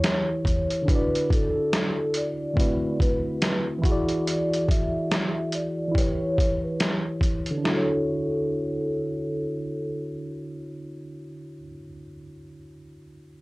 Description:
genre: lo-fi hip hop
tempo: 71 BPM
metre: 4/4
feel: swing 58% on 16ths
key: D major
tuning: A4 = 439 Hz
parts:
  - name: vibraphone with soft mallets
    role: melody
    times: 0.0-10.1 s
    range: A4 to E5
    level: -29 LUFS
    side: equal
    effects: low-pass filter, plate reverb
  - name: tine electric piano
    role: accompaniment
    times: 0.0-13.4 s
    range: D3 to D5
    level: -28 LUFS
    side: equal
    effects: medium stereo tremolo, cassette tape, low-pass filter
  - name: trip hop sampler-style drum kit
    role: drums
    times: 0.0-7.9 s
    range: hi-hat, kick drum, snare drum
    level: -24 LUFS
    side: equal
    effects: none
  - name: upright bass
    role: bass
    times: 0.5-0.7 s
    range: E2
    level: -31 LUFS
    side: equal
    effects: none
room: light reverb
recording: dry, gritty hardware recording, cassette tape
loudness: -23 LUFS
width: side -22 dB against mid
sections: 0.0-7.6 A section; 7.6-11.0 B section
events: filter sweep 0.0-7.6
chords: 0.0 Em6; 0.9 D; 2.6 D13; 3.8 E7; 5.9 Em6; 7.6 Dmaj7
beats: 0.03 | 0.88 1.72 2.57 3.41 | 4.26 5.10 5.95 6.79 | 7.64 8.48 9.33 10.17

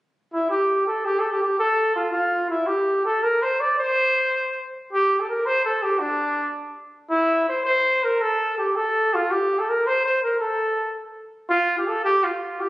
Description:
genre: celtic folk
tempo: 109 BPM (dotted quarters)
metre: 6/8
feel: straight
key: C mixolydian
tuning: A4 = 439 Hz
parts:
  - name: mellow trumpet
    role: solo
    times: 0.3-12.7 s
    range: D4 to D5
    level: -20 LUFS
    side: equal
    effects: none
room: moderate recital hall reverb, RT60 1.5 s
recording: recorded on a phone in the room, club ambience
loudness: -20 LUFS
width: side -17 dB against mid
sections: 0.5-4.9 A section; 4.9-12.7 B section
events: none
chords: none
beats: | 0.51 1.06 | 1.60 2.15 | 2.70 3.25 | 3.80 4.35 | 4.89 5.44 | 5.99 6.54 | 7.09 7.64 | 8.19 8.74 | 9.29 9.85 | 10.40 10.95 | 11.50 12.05 | 12.60

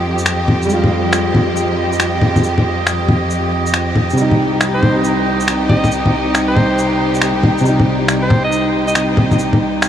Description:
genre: future garage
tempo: 138 BPM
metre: 4/4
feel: swing 66% on 16ths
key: C minor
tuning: A4 = 440 Hz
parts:
  - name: felt-muted upright piano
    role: accompaniment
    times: 0.0-9.9 s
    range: C3 to F4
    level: -19 LUFS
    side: equal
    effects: vintage 12-bit sampler grit, tape echo
  - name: clear studio string section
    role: sustained chords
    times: 0.0-9.9 s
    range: C2 to G4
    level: -17 LUFS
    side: equal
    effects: vintage 12-bit sampler grit, low-pass filter
  - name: drifting glass-harmonics texture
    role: texture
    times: 0.0-9.9 s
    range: Eb5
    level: -27 LUFS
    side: right 4 dB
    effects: chorus, built-in reverb
  - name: electronic shaker, finger snaps and bongos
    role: drums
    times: 0.2-9.9 s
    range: none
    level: -17 LUFS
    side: left 1 dB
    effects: none
  - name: bright alto saxophone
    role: melody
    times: 4.7-9.0 s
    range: C5 to Eb5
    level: -21 LUFS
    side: right 1 dB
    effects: tape echo
room: wet huge ambient reverb, RT60 7.4 s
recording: dreamy mix soaked in reverb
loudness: -12 LUFS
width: side -10 dB against mid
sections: 0.0-9.9 A section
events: none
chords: 0.0 Fmadd9; 4.2 Cm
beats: 0.26 | 0.69 1.13 1.56 2.00 | 2.43 2.87 3.30 3.74 | 4.17 4.61 5.04 5.48 | 5.91 6.34 6.78 7.21 | 7.65 8.08 8.52 8.95 | 9.39 9.82

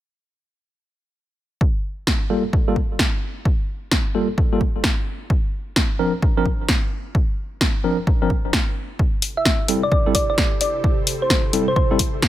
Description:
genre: UK garage, two-step garage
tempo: 130 BPM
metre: 4/4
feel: swing 64% on 16ths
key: G dorian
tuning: A4 = 440 Hz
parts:
  - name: electronic kick drum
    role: drums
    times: 1.6-12.3 s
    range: none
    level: -20 LUFS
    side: equal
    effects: none
  - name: punchy analog drum machine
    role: drums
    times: 2.1-12.3 s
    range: hi-hat, snare drum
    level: -22 LUFS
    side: equal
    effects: none
  - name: tine electric piano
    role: stabs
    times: 2.3-12.0 s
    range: F3 to Bb4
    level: -23 LUFS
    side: equal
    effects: fast stereo tremolo, low-pass filter, digital delay
  - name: ethereal airy pad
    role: sustained chords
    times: 9.4-12.3 s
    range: C3 to C5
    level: -29 LUFS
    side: equal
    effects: ensemble chorus, built-in reverb, sidechain pumping
  - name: thumb-piano-like synth pluck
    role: melody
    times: 9.4-11.9 s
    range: C5 to E5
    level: -22 LUFS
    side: equal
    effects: chorus, vintage 12-bit sampler grit, digital delay
room: little or no reverb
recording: none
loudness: -18 LUFS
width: side -13 dB against mid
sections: 1.6-12.3 A section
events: none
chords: 1.6 Gm9; 5.1 C9sus4; 8.8 Am7/C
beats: | 1.61 2.07 2.53 2.99 | 3.46 3.92 4.38 4.84 | 5.30 5.76 6.22 6.69 | 7.15 7.61 8.07 8.53 | 8.99 9.46 9.92 10.38 | 10.84 11.30 11.76 12.22

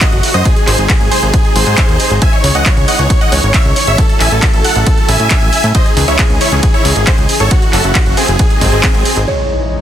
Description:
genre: uplifting trance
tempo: 136 BPM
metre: 4/4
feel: straight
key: C# harmonic minor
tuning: A4 = 440 Hz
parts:
  - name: big supersaw lead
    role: melody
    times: 0.0-9.2 s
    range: B#3 to G#5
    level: -15 LUFS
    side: equal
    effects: sidechain pumping, tape echo
  - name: lush unison pad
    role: sustained chords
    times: 0.0-9.8 s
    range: B#2 to E4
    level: -22 LUFS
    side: equal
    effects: chorus, sidechain pumping
  - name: electronic kick drum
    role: drums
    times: 0.0-8.9 s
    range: none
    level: -12 LUFS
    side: equal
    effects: none
  - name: punchy analog drum machine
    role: drums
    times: 0.0-9.3 s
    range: handclaps, hi-hat, ride cymbal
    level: -17 LUFS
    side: right 1 dB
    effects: none
  - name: plucky analog bass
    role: bass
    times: 0.1-9.3 s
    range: F#1 to A2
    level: -14 LUFS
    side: equal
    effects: sidechain pumping
  - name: dark grand piano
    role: second line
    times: 9.3-9.8 s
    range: C#5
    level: -18 LUFS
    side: right 1 dB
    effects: tape echo
  - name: impact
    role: sound effects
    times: 9.3-9.8 s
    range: none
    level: -18 LUFS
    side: equal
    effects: none
room: little or no reverb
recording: dense, heavily limited modern master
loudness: -9 LUFS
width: side -10 dB against mid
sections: 0.0-9.3 A section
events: drop 0.0-9.3; impact 9.3-9.8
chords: 0.5 G#7; 2.2 C#madd9; 4.0 A6; 5.7 C#madd9; 7.5 F#m7; 8.4 G#7; 9.3 C#madd9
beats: 0.01 | 0.45 0.89 1.34 1.78 | 2.22 2.66 3.10 3.54 | 3.98 4.42 4.87 5.31 | 5.75 6.19 6.63 7.07 | 7.51 7.95 8.39 8.84 | 9.28 9.72

